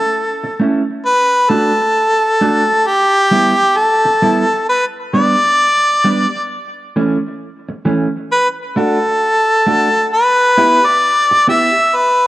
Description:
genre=reggae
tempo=66 BPM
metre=4/4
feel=swing 62% on 16ths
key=D major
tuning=A4 = 441 Hz
part: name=clear harmonica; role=melody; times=0.0-12.3 s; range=G4 to E5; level=-12 LUFS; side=equal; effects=cassette tape, tape echo
part: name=mellow electric guitar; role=accompaniment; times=0.4-11.7 s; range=E3 to G4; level=-17 LUFS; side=right 2 dB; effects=tape echo
room=moderate spring reverb, RT60 2.0 s, small room ambience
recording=home recording on cassette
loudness=-11 LUFS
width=side -16 dB against mid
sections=0.0-1.1 A section; 1.1-12.3 B section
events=none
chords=0.0 A; 1.1 D; 2.9 Em; 4.7 G; 6.5 A; 8.3 D; 10.1 Em

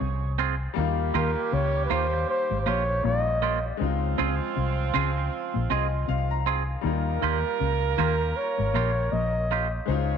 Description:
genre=reggae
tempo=79 BPM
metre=4/4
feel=swing 59% on 16ths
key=Eb mixolydian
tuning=A4 = 440 Hz
part: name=warm horn section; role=second line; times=0.0-10.2 s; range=Eb3 to Db5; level=-32 LUFS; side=right 10 dB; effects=none
part: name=clear grand piano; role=accompaniment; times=0.0-10.2 s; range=G3 to Bb5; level=-33 LUFS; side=left 11 dB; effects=slapback echo
part: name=mellow electric guitar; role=riff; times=0.0-10.1 s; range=Ab2 to Eb3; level=-34 LUFS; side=left 12 dB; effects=none
part: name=vintage muted fingered electric bass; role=bass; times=0.0-10.2 s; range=Ab1 to Eb2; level=-27 LUFS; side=equal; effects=none
part: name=twangy electric guitar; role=stabs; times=0.4-9.7 s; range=Bb3 to Ab4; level=-31 LUFS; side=right 10 dB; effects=none
part: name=breathy flugelhorn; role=melody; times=1.2-9.7 s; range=Bb4 to Eb5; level=-28 LUFS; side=left 1 dB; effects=tape echo
room=wet spring reverb, RT60 2.4 s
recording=1960s-style stereo with parts hard left and right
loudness=-23 LUFS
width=side -7 dB against mid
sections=0.0-10.2 A section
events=grand piano fill 5.3-6.8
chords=0.0 Dbmaj7; 0.8 Ebadd9; 3.8 Dbmaj7; 6.8 Ebadd9

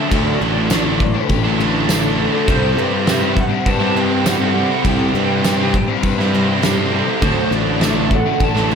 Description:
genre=rock, shoegaze and dream pop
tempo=101 BPM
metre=4/4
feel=straight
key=unclear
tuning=A4 = 440 Hz
part: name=lead guitar through a small cranked amp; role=melody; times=0.0-8.7 s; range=C5 to A5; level=-24 LUFS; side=right 2 dB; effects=overdrive, lush chorus, ping-pong delay
part: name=picked twelve-string acoustic guitar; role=arpeggios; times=0.0-8.8 s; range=F#4 to C5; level=-27 LUFS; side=left 2 dB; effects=ensemble chorus, ping-pong delay
part: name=overdriven electric guitar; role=riff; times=0.0-8.8 s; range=C3 to E4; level=-21 LUFS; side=right 9 dB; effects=reverse reverb
part: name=thick fuzz guitar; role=riff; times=0.0-8.8 s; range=C3 to D4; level=-21 LUFS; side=left 9 dB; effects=distortion, lush chorus
part: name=fuzz fingered electric bass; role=bass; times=0.1-8.8 s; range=A1 to G2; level=-20 LUFS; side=equal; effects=overdrive
part: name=loose indie drum kit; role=drums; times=0.1-8.6 s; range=crash cymbal, kick drum, snare drum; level=-20 LUFS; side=equal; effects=none
part: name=tambourine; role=percussion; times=0.7-8.0 s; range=none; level=-29 LUFS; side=right 14 dB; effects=none
room=moderate lush hall reverb, RT60 1.7 s, small room ambience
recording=dreamy mix soaked in reverb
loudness=-14 LUFS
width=side -6 dB against mid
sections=0.0-8.8 A section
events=none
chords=0.0 D; 2.5 C; 7.2 D

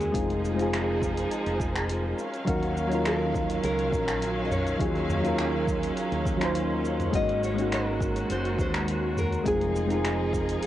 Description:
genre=sunset chillout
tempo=103 BPM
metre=4/4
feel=straight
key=Eb dorian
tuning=A4 = 437 Hz
part: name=nylon-string guitar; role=melody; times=0.0-10.7 s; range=Gb4 to Eb5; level=-32 LUFS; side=left 1 dB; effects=cassette tape, analog delay
part: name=soft electric-piano-like synth keys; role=accompaniment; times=0.0-10.7 s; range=Gb3 to F5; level=-29 LUFS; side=moving between left 3 dB and right 3 dB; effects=chorus, auto-pan, cassette tape, tape echo
part: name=clear studio string section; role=sustained chords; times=0.0-10.7 s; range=Eb3 to F5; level=-33 LUFS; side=equal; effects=cassette tape
part: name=mellow fretless electric bass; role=bass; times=0.0-10.6 s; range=F1 to Eb2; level=-32 LUFS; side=equal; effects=tube saturation, analog chorus
part: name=smooth R&B drum kit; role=drums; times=0.0-10.7 s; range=cabasa, finger snaps, hi-hat, toms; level=-34 LUFS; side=equal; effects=cassette tape
part: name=wind-like tuned noise texture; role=texture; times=0.0-10.7 s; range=Bb4 to C6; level=-41 LUFS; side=equal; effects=built-in reverb, cassette tape
part: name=electronic kick drum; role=drums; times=0.1-10.5 s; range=none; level=-32 LUFS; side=equal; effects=overdrive, cassette tape
room=moderate spring reverb, RT60 2.7 s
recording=home recording on cassette, nothing above 10.8 kHz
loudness=-24 LUFS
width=side -13 dB against mid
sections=0.0-10.7 A section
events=none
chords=0.1 Fm7; 2.2 Ebm9; 7.1 Ab9sus4; 9.5 Fm7

